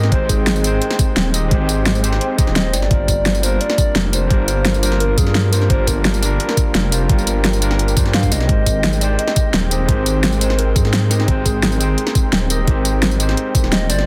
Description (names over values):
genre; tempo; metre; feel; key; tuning
liquid drum and bass; 172 BPM; 4/4; straight; Ab lydian; A4 = 441 Hz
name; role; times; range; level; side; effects
hollow clarinet-like synth lead; melody; 0.0-14.1 s; Ab4 to F5; -26 LUFS; equal; chorus, digital delay
overdriven tine electric piano; accompaniment; 0.0-14.1 s; F3 to G5; -26 LUFS; equal; digital delay
ethereal airy pad; sustained chords; 0.0-14.1 s; C4 to G5; -30 LUFS; equal; ensemble chorus, built-in reverb, sidechain pumping
dark detuned saw bass; bass; 0.0-14.1 s; Eb1 to Ab2; -21 LUFS; equal; none
pop drum kit; drums; 0.0-14.1 s; hi-hat, snare drum, tambourine; -22 LUFS; equal; overdrive
electronic kick drum; drums; 0.1-13.6 s; none; -19 LUFS; equal; overdrive
room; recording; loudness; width
light reverb; dense, heavily limited modern master; -16 LUFS; mono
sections
0.0-14.1 A section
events
none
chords
0.0 Abmaj7; 2.7 Gm7; 8.5 Abmaj7